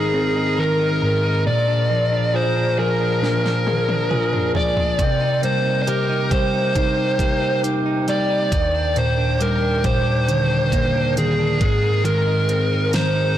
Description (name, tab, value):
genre	pop ballad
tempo	68 BPM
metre	4/4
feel	straight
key	C minor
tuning	A4 = 441 Hz
part	fuzz lead guitar	melody	0.0-13.4 s	Ab4 to D5	-21 LUFS	equal	distortion
part	bell-like tine electric piano	accompaniment	0.0-13.4 s	Eb2 to Ab4	-21 LUFS	left 1 dB	none
part	mellow woodwind section	sustained chords	0.0-13.4 s	C3 to G5	-28 LUFS	left 1 dB	none
part	direct-recorded clean electric guitar	arpeggios	0.0-13.4 s	Bb2 to Bb4	-28 LUFS	right 7 dB	spring reverb, ping-pong delay
part	pop drum kit	drums	3.2-13.1 s	hi-hat, kick drum, snare drum, toms	-24 LUFS	equal	none
room	light reverb, digital ambience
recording	blown-out, overdriven recording, overdrive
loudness	-17 LUFS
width	side -11 dB against mid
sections	0.0-13.4 A section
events	drum fill 3.2-5.0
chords	0.0 Abadd9; 1.5 Bb7; 5.0 Cm7; 8.5 Ebmaj7; 11.6 Abadd9